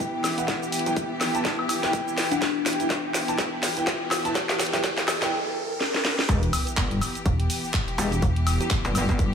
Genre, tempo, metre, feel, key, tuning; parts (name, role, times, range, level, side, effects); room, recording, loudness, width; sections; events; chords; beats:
bass house; 124 BPM; 4/4; swing 58% on 16ths; E minor; A4 = 440 Hz
rich symphonic string section; sustained chords; 0.0-9.3 s; E3 to G4; -32 LUFS; left 1 dB; sidechain pumping
warm grand piano; stabs; 0.0-5.3 s; E4 to A5; -31 LUFS; right 3 dB; sidechain pumping, low-pass filter, tape echo
electronic kick drum; drums; 0.0-9.3 s; -27 LUFS; equal; high-pass filter on kick
house drum kit; drums; 0.0-9.3 s; handclaps, hi-hat, shaker, snare drum, woodblock; -26 LUFS; equal
riser and sub drop; sound effects; 0.2-8.2 s; -33 LUFS; equal
granular cloud pad; texture; 0.0-5.3 s; D4 to G5; -33 LUFS; equal; built-in reverb, sidechain pumping
kalimba; melody; 0.9-5.4, 8.6-9.3 s; D4 to G4; -32 LUFS; left 6 dB; tape echo
metallic wobble bass; bass; 6.3-9.3 s; E1 to G1; -24 LUFS; equal; chorus, tube saturation, sidechain pumping
metallic FM bass; bass; 7.3-8.6 s; E1; -23 LUFS; equal; tube saturation, sidechain pumping
moderate lush hall reverb, RT60 2.1 s; small room ambience; -22 LUFS; side -7 dB against mid
0.0-6.3 A section; 6.3-9.3 B section
build-up 0.0-6.3; drum fill 0.0-5.3, 5.8-6.3; riser 0.2-6.3; drop 6.3-9.3; impact 6.3-8.2
0.0 Em
0.00 | 0.48 0.97 1.45 1.93 | 2.42 2.90 3.38 3.87 | 4.35 4.84 5.32 5.80 | 6.29 6.77 7.26 7.74 | 8.22 8.71 9.19